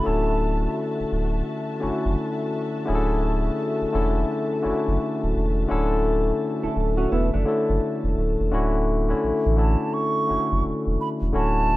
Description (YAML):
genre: R&B, neo-soul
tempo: 85 BPM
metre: 4/4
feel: swing 62% on 16ths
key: D major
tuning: A4 = 440 Hz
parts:
  - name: hollow concert flute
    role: melody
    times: 0.0-0.8, 9.6-11.8 s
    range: A5 to C#6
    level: -26 LUFS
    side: right 3 dB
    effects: slapback echo
  - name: barky tine electric piano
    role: accompaniment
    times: 0.0-11.8 s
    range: D3 to C#5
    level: -24 LUFS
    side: left 2 dB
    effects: overdrive
  - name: dark studio string section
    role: sustained chords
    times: 0.0-8.5 s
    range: F#4 to A5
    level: -35 LUFS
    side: left 1 dB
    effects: none
  - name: warm sub bass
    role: bass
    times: 0.1-11.8 s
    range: D1 to A1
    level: -23 LUFS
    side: equal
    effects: none
  - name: hollow-body jazz guitar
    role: second line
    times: 6.6-8.3 s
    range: A3 to A4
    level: -28 LUFS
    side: right 3 dB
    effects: none
room: moderate plate reverb, RT60 2.9 s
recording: rough home demo mix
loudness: -21 LUFS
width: side -17 dB against mid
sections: 0.0-8.5 A section; 8.5-11.8 B section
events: none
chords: 0.0 Dmaj9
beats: | 0.05 0.75 1.46 2.16 | 2.87 3.58 4.28 4.99 | 5.69 6.40 7.11 7.81 | 8.52 9.22 9.93 10.63 | 11.34